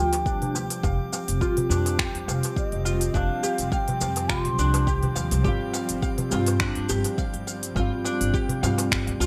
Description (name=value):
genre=organic downtempo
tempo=104 BPM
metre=4/4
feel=swing 54% on 16ths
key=unclear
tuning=A4 = 442 Hz
part: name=mellow bansuri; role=melody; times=0.0-5.2 s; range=Eb5 to C6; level=-34 LUFS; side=equal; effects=delay
part: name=bowed-like drone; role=sustained chords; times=0.0-9.3 s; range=F3 to C4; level=-38 LUFS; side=equal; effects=built-in reverb, sidechain pumping
part: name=oud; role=arpeggios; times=0.0-9.3 s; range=D4 to F5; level=-33 LUFS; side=equal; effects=low-pass filter, delay
part: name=upright bass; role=bass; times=0.0-9.3 s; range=F1 to G2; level=-29 LUFS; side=equal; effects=sidechain pumping
part: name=drifting glass-harmonics texture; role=texture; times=0.0-9.3 s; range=G4 to G6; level=-39 LUFS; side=equal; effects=chorus, built-in reverb
part: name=organic electronic drum kit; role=drums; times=0.1-9.3 s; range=cabasa, finger snaps, hi-hat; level=-32 LUFS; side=equal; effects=gated reverb
part: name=darbuka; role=percussion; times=0.1-9.3 s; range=none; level=-34 LUFS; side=equal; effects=none
part: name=electronic kick drum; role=drums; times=0.3-9.0 s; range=none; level=-30 LUFS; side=equal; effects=none
part: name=felt-muted upright piano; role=accompaniment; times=5.4-9.3 s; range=G3 to F4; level=-32 LUFS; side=equal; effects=lush chorus, sidechain pumping, delay
room=light reverb, studio ambience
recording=bright 1980s-style digital production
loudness=-25 LUFS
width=mono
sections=0.0-9.3 A section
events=filter sweep on oud 0.0-9.3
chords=0.0 G7sus4; 0.8 Fsus2; 5.5 G7sus4